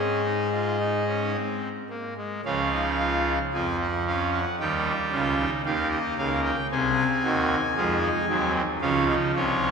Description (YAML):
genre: classical, baroque-style 4-part fugue for pipe organ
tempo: 56 BPM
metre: 4/4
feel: straight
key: Db major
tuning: A4 = 439 Hz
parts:
  - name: pipe organ, trumpet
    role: solo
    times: 0.0-9.7 s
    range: C2 to Ab5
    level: -23 LUFS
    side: equal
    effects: none
room: wet church reverb, RT60 3.0 s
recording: recorded in a church or concert hall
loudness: -23 LUFS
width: side -5 dB against mid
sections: 0.0-2.5 A section; 2.5-9.7 B section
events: none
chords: 0.0 Ab; 2.5 Db; 4.6 Eb7; 6.7 Ab7/C; 8.8 Db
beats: 0.25 1.36 | 2.45 3.54 4.59 5.65 | 6.70 7.75 8.81